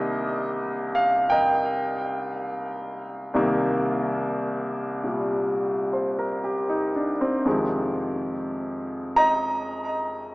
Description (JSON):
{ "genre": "solo jazz", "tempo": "58 BPM", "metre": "4/4", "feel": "swing 66% on 8ths", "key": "C minor", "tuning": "A4 = 444 Hz", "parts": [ { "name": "warm concert grand piano", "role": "solo", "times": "0.0-10.3 s", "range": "C2 to Bb5", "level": "-23 LUFS", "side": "equal", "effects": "diffuse ambient delay" } ], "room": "wet lush hall reverb, RT60 2.8 s", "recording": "dreamy mix soaked in reverb, small speaker sound", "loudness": "-23 LUFS", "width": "side -22 dB against mid", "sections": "0.0-10.3 A section", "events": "none", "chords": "0.0 Cm7; 7.5 Fm7" }